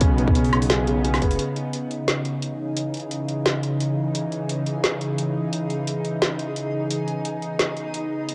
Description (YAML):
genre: half-time drum and bass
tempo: 174 BPM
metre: 4/4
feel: half-time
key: unclear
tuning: A4 = 441 Hz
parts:
  - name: bowed-like drone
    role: sustained chords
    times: 0.0-8.3 s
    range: C#3 to D#4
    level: -28 LUFS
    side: equal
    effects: built-in reverb, sidechain pumping, cassette tape
  - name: felt-muted upright piano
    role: arpeggios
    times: 0.0-1.4 s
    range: C#3 to G#4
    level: -31 LUFS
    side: equal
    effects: cassette tape, analog delay
  - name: dark detuned saw bass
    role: bass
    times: 0.0-1.4 s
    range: F#1 to B1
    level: -25 LUFS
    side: equal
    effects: none
  - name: drum and bass drum kit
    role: drums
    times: 0.0-8.3 s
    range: hi-hat, snare drum, woodblock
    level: -27 LUFS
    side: equal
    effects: cassette tape
  - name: electronic kick drum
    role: drums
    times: 0.0-1.3 s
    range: none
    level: -22 LUFS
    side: equal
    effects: cassette tape
  - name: backwards swelling texture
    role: texture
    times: 1.4-8.3 s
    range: G#4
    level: -38 LUFS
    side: equal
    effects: built-in reverb, cassette tape
room: moderate spring reverb, RT60 1.8 s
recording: home recording on cassette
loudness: -24 LUFS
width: mono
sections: 0.0-1.4 A section; 1.4-8.3 B section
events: drop 0.0-1.4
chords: 0.0 Badd9; 1.4 C#madd9; 6.9 Badd9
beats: | 0.01 0.36 0.70 1.05 | 1.39 1.74 2.08 2.43 | 2.77 3.12 3.46 3.81 | 4.15 4.50 4.84 5.18 | 5.53 5.87 6.22 6.56 | 6.91 7.25 7.60 7.94 | 8.29